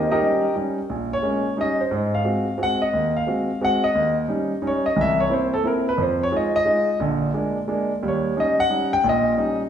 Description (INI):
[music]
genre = jazz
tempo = 176 BPM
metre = 3/4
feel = swing 63% on 8ths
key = Eb mixolydian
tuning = A4 = 440 Hz
[part]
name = warm concert grand piano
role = solo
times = 0.0-9.6 s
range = Bb1 to G5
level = -19 LUFS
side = equal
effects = none
[sound]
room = wet large studio reverb, RT60 1.4 s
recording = band playing live in one room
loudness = -19 LUFS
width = side -8 dB against mid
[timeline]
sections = 0.0-9.7 A section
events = grand piano solo 0.0-9.7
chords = 0.0 Eb7; 0.9 Bbm7; 1.6 Eb7; 1.9 Ab7; 3.9 Eb7; 5.0 C7; 6.0 Fm7; 7.0 Bb7; 8.0 Eb7